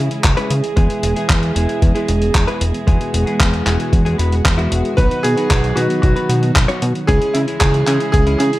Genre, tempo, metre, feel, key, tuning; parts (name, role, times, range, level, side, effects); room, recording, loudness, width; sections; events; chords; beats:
italo disco; 114 BPM; 4/4; straight; E major; A4 = 440 Hz
dark chamber string section; sustained chords; 0.0-8.6 s; B2 to G#4; -22 LUFS; right 2 dB
fat analog bass; bass; 0.0-8.5 s; E1 to C#3; -18 LUFS; equal
dusty soul sampler-style drum kit; drums; 0.1-8.6 s; handclaps, hi-hat; -21 LUFS; equal; gated reverb
electronic kick drum; drums; 0.2-8.2 s; -15 LUFS; equal
direct-recorded clean electric guitar; stabs; 0.4-8.4 s; G#3 to C#5; -24 LUFS; left 2 dB; wide subtle chorus, tape echo
clear baby grand piano; melody; 5.0-8.6 s; E4 to B4; -19 LUFS; right 1 dB; tape echo
little or no reverb; -13 LUFS; side -17 dB against mid
0.0-8.6 A section
0.0 C#m; 0.8 E; 5.0 B; 7.1 C#m
0.24 | 0.77 1.29 1.82 2.35 | 2.87 3.40 3.93 4.45 | 4.98 5.51 6.03 6.56 | 7.08 7.61 8.14